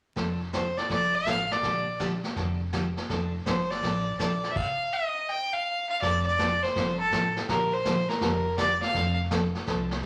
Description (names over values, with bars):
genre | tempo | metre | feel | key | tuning
country, western swing | 164 BPM | 4/4 | swing 66% on 8ths | F major | A4 = 440 Hz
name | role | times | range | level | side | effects
picked steel-string acoustic guitar | accompaniment | 0.2-10.1 s | D3 to A4 | -34 LUFS | equal | none
upright bass | bass | 0.2-10.1 s | F1 to C2 | -37 LUFS | equal | none
vintage brush drum kit | drums | 0.2-10.1 s | brushed snare drum, crash cymbal, hi-hat, kick drum, snare drum | -34 LUFS | equal | none
clear fiddle | melody | 0.5-9.2 s | A4 to G5 | -29 LUFS | equal | none
room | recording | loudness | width
moderate large studio reverb, RT60 0.8 s | vinyl crackle | -27 LUFS | mono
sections
0.2-6.0 A section; 6.0-10.1 B section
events
none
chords
0.2 F6; 1.6 Bb6; 3.1 F6; 4.6 N.C.; 6.0 F6; 7.5 Bb6; 8.9 F6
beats
| 0.16 0.53 0.90 1.26 | 1.63 2.00 2.36 2.73 | 3.09 3.46 3.83 4.19 | 4.56 4.92 5.29 5.66 | 6.02 6.39 6.75 7.12 | 7.48 7.85 8.21 8.58 | 8.94 9.31 9.67 10.04